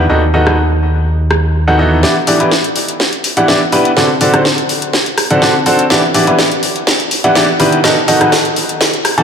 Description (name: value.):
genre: piano house.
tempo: 124 BPM.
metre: 4/4.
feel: swing 53% on 16ths.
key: E minor.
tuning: A4 = 440 Hz.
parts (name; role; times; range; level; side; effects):
bright upright piano; riff; 0.0-9.2 s; D3 to A5; -12 LUFS; equal; low-pass filter, ping-pong delay.
overdriven fingered electric bass; bass; 0.0-2.0 s; D#2; -12 LUFS; equal; low-pass filter.
house drum kit; drums; 0.5-9.2 s; hi-hat, rim click, snare drum; -14 LUFS; equal; high-pass filter on snare, high-pass filter on hats, high-pass filter on room.
room: wet plate reverb, RT60 2.5 s.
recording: dreamy mix soaked in reverb.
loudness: -9 LUFS.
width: side -7 dB against mid.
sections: 0.0-2.0 A section; 2.0-9.2 B section.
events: build-up 2.0-9.2; drum fill 2.0-9.2.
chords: 0.1 B7/D#; 2.0 Em7; 4.0 D7; 5.9 Em7; 7.8 B7/D#.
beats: | 0.10 0.58 1.06 1.55 | 2.03 2.52 3.00 3.48 | 3.97 4.45 4.93 5.42 | 5.90 6.39 6.87 7.36 | 7.84 8.32 8.81.